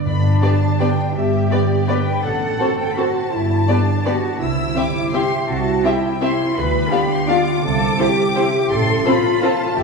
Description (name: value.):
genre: classical, orchestral ballroom waltz.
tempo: 167 BPM.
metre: 3/4.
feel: uneven beats, rubato.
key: G major.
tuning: A4 = 444 Hz.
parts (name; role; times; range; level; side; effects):
rich studio viola section; accompaniment; 0.0-9.5 s; B3 to G4; -25 LUFS; left 1 dB; none.
concert harp; arpeggios; 0.0-9.8 s; G2 to F4; -23 LUFS; equal; none.
warm studio violin section; melody; 0.1-9.8 s; D5 to E6; -25 LUFS; left 3 dB; none.
rich symphonic double bass section; bass; 0.1-9.8 s; G1 to D2; -23 LUFS; right 1 dB; none.
warm studio cello section; bass; 0.1-9.8 s; D4 to B4; -21 LUFS; equal; none.
timpani; percussion; 0.1-0.6 s; G2; -24 LUFS; left 1 dB; none.
rich studio violin section; second line; 0.4-9.5 s; F4 to F5; -24 LUFS; left 1 dB; none.
room: wet scoring stage reverb, RT60 1.9 s.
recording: heard from further back in the room.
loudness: -15 LUFS.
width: side -4 dB against mid.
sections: 0.1-9.8 A section.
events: none.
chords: 0.1 G; 2.2 F#dim/A; 3.3 G; 4.4 C; 6.6 Bdim/D; 7.6 C; 8.7 F/A.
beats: | 0.06 0.42 0.80 | 1.16 1.52 1.89 | 2.24 2.60 2.97 | 3.32 3.69 4.06 | 4.41 4.76 5.14 | 5.49 5.85 6.22 | 6.57 6.92 7.29 | 7.64 7.99 8.36 | 8.71 9.06 9.42 | 9.77.